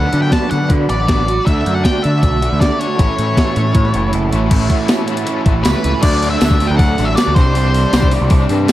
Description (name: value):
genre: indie rock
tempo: 158 BPM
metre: 4/4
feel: straight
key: D major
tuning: A4 = 438 Hz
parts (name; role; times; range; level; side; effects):
- octave-fuzz lead guitar; melody; 0.0-8.1 s; B4 to A5; -20 LUFS; left 1 dB; distortion, analog delay
- analog string pad; sustained chords; 0.0-6.0 s; F#4 to B5; -29 LUFS; equal; none
- overdriven electric guitar; riff; 0.0-8.7 s; A2 to G4; -23 LUFS; left 4 dB; tremolo
- overdriven electric guitar; riff; 0.0-8.7 s; A2 to F#4; -20 LUFS; right 6 dB; ensemble chorus
- growling picked electric bass; bass; 0.0-8.7 s; F#1 to D3; -16 LUFS; equal; overdrive
- clean 12-bit digital drum machine; drums; 0.1-8.7 s; crash cymbal, hi-hat, kick drum, snare drum; -15 LUFS; equal; none
- tambourine; percussion; 4.9-8.7 s; none; -32 LUFS; right 14 dB; none
room: light reverb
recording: dark, warm production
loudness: -12 LUFS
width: side -14 dB against mid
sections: 0.0-4.5 A section; 4.5-6.0 B section; 6.0-8.7 C section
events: kick and snare drop out 4.1-4.5, 5.8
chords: 0.0 Bm/D; 1.5 D6; 3.0 A6; 6.0 Dadd9; 7.4 Csus2